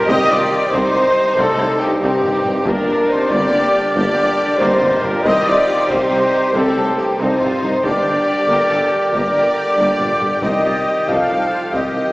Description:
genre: cinematic, epic orchestral film score.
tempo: 93 BPM (dotted quarters).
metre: 12/8.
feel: straight.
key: unclear.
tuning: A4 = 441 Hz.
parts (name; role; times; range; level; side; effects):
rich symphonic violin section; melody; 0.0-12.1 s; Bb3 to A4; -25 LUFS; left 1 dB; none.
warm symphonic violin section; second line; 0.0-12.1 s; G4 to F5; -26 LUFS; left 1 dB; none.
dark trombone section; sustained chords; 0.0-12.1 s; G2 to F3; -25 LUFS; equal; none.
dark woodwind section; sustained chords; 0.0-12.1 s; G3 to G5; -26 LUFS; equal; none.
mellow French horn section; sustained chords; 0.0-12.1 s; G4 to F5; -18 LUFS; equal; none.
mellow trumpet section; stabs; 0.0-12.1 s; G4 to F5; -21 LUFS; equal; none.
dark symphonic cello section; bass; 0.0-12.1 s; Bb3 to Bb4; -25 LUFS; equal; none.
dark symphonic viola section; accompaniment; 0.1-12.0 s; C3 to C4; -26 LUFS; equal; none.
clear symphonic double bass section; bass; 0.1-12.0 s; G1 to C2; -29 LUFS; equal; none.
warm tuba; bass; 0.1-12.0 s; G1 to C2; -26 LUFS; equal; none.
taiko ensemble; drums; 0.1-12.1 s; none; -30 LUFS; equal; none.
room: wet scoring stage reverb, RT60 1.8 s.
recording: heard from further back in the room, small speaker sound.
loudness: -14 LUFS.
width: side -21 dB against mid.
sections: 0.0-12.1 A section.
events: none.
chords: 0.1 Cm; 2.7 Gm; 5.2 Cm; 7.8 Gm; 10.4 Cm.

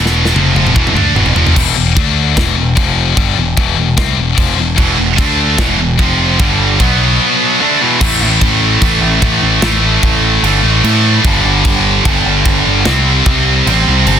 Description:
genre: heavy metal.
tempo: 149 BPM.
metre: 4/4.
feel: straight.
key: unclear.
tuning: A4 = 439 Hz.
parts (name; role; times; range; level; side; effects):
heavy high-gain guitar; riff; 0.0-14.2 s; E2 to D4; -14 LUFS; left 13 dB; distortion.
heavy high-gain guitar; riff; 0.0-1.6, 4.8-14.2 s; E2 to D4; -14 LUFS; right 15 dB; distortion.
growling picked electric bass; bass; 0.0-14.2 s; E1 to A2; -15 LUFS; equal; overdrive.
tight metal drum kit; drums; 0.1-14.2 s; crash cymbal, kick drum, snare drum, toms; -16 LUFS; equal; none.
room: little or no reverb.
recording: dense, heavily limited modern master.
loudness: -9 LUFS.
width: side -9 dB against mid.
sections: 0.0-1.6 A section; 1.6-8.0 B section; 8.0-14.2 C section.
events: drum fill 0.0-1.6; half time 8.0-14.2.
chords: 0.0 E5; 2.0 D5; 2.4 E5; 2.8 F5; 3.2 Em; 5.2 D5; 5.6 E5; 6.0 F5; 6.4 G5; 6.8 B5; 7.6 E5; 8.0 A5; 11.2 G5; 12.9 C5.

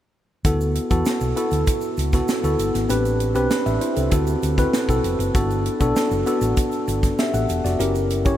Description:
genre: polished 1980s jazz-funk pop.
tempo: 98 BPM.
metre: 4/4.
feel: straight.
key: D major.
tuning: A4 = 440 Hz.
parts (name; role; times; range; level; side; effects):
tine electric piano; accompaniment; 0.4-8.4 s; B3 to F#5; -21 LUFS; equal; analog chorus.
hollow-body short-scale fingered electric bass; bass; 0.4-8.4 s; E1 to E2; -23 LUFS; equal; none.
tight funk drum kit; drums; 0.4-8.4 s; hi-hat, kick drum, snare drum; -24 LUFS; equal; none.
egg shaker; percussion; 0.5-8.4 s; none; -40 LUFS; right 7 dB; none.
room: moderate huge ambient reverb, RT60 7.5 s.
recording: dreamy mix soaked in reverb.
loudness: -18 LUFS.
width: side -12 dB against mid.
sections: 0.4-8.4 A section.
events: none.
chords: 0.4 D69; 2.9 Am11; 4.1 D9; 5.3 Gmaj9; 7.8 F#7b9.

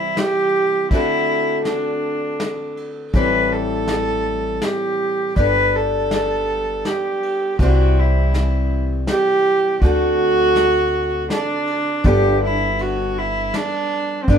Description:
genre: acoustic folk duo or small band.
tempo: 81 BPM.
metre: 3/4.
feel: straight.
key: G major.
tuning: A4 = 440 Hz.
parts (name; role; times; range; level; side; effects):
warm cello; melody; 0.0-14.4 s; B3 to B4; -19 LUFS; right 2 dB; none.
picked acoustic archtop guitar; accompaniment; 0.0-14.4 s; A2 to C5; -23 LUFS; left 3 dB; none.
vintage brush drum kit; drums; 0.2-14.4 s; kick drum, ride cymbal, snare drum; -22 LUFS; equal; none.
upright bass; bass; 3.1-14.4 s; G1 to D2; -21 LUFS; equal; none.
room: moderate studio reverb, RT60 0.6 s.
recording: minimal, uncompressed stereo recording.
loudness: -16 LUFS.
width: side -8 dB against mid.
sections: 0.0-12.1 A section; 12.1-14.4 B section.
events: none.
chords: 0.0 C; 0.9 D7; 3.1 Am7; 5.4 Gadd9; 7.6 C; 9.8 D7; 12.1 Gadd9.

